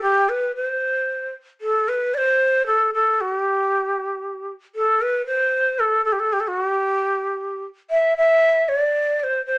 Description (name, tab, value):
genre	persian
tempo	115 BPM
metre	3/4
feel	straight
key	C dastgah mahur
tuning	A4 = 439 Hz
part	breathy bright ney	solo	0.0-9.6 s	G4 to E5	-18 LUFS	equal	none
room	moderate studio reverb, RT60 0.6 s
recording	small speaker sound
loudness	-18 LUFS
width	side -25 dB against mid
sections	0.0-1.6 A section; 1.6-9.6 B section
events	none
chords	none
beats	| 0.04 0.56 1.09 | 1.61 2.13 2.66 | 3.18 3.71 4.23 | 4.75 5.28 5.80 | 6.32 6.85 7.37 | 7.89 8.42 8.94 | 9.47